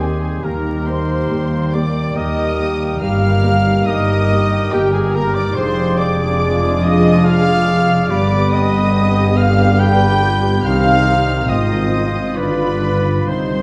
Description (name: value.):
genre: classical, slow romantic movement for symphony orchestra.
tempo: 70 BPM.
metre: 3/4.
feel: rubato.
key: unclear.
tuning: A4 = 440 Hz.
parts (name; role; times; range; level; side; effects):
dark studio violin section; melody; 0.0-13.6 s; G5 to G6; -29 LUFS; equal; none.
mellow clarinet; second line; 0.0-13.6 s; Eb4 to Ab4; -28 LUFS; equal; none.
mellow flute section; second line; 0.0-13.6 s; G4 to G5; -28 LUFS; equal; none.
warm oboe; second line; 0.0-13.6 s; Bb4 to D5; -29 LUFS; equal; none.
warm symphonic violin section; second line; 0.0-13.6 s; G4 to G5; -30 LUFS; equal; none.
dark symphonic viola section; accompaniment; 0.0-13.6 s; Bb3 to Ab4; -27 LUFS; equal; none.
clear French horn section; sustained chords; 0.0-13.6 s; Bb3 to G4; -29 LUFS; equal; none.
warm trombone section; sustained chords; 0.0-13.6 s; D3 to Ab3; -26 LUFS; equal; none.
concert harp; arpeggios; 0.0-13.6 s; F2 to C6; -27 LUFS; equal; none.
warm trumpet; stabs; 0.0-13.6 s; G4 to G5; -25 LUFS; equal; none.
dark chamber cello section; bass; 0.0-13.6 s; Eb2 to C3; -22 LUFS; equal; none.
dark symphonic double bass section; bass; 0.0-13.6 s; F1 to Eb2; -24 LUFS; equal; none.
room: moderate scoring stage reverb, RT60 1.6 s.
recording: dark, warm production, vinyl crackle.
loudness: -16 LUFS.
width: mono.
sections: 0.0-13.6 A section.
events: none.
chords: 0.4 Eb; 3.0 Eb/G; 5.6 Ddim/F; 8.1 G; 10.7 Cm; 11.5 Ab6; 12.4 G7.